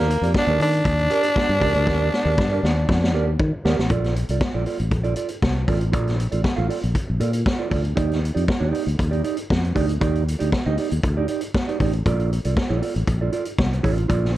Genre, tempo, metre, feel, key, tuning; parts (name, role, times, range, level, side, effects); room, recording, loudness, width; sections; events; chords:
disco; 118 BPM; 4/4; straight; Bb major; A4 = 439 Hz
raspy tenor saxophone; melody; 0.0-3.4 s; Bb3 to D4; -21 LUFS; equal
mellow electric guitar; accompaniment; 0.0-14.4 s; Eb4 to F5; -26 LUFS; right 6 dB
fingered electric bass; bass; 0.0-14.4 s; A1 to Eb3; -22 LUFS; equal
vintage drum kit; drums; 0.1-14.3 s; hi-hat, kick drum, snare drum; -24 LUFS; equal
studio ambience; dark, warm production; -19 LUFS; side -15 dB against mid
0.0-3.9 A section; 3.9-14.4 B section
drum fill 1.9-3.9
0.0 Ebmaj7; 3.9 Bbmaj7; 8.0 Ebmaj7; 12.1 Bbmaj7